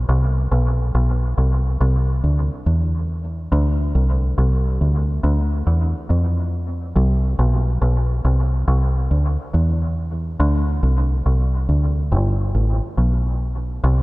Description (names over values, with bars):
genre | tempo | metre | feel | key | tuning
reggae | 70 BPM | 4/4 | swing 63% on 16ths | C major | A4 = 435 Hz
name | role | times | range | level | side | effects
deep dub fingered electric bass | solo | 0.0-14.0 s | G1 to F2 | -17 LUFS | equal | dub echo
room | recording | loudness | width
light reverb | rough home demo mix | -17 LUFS | side -21 dB against mid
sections
0.0-13.8 A section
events
none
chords
none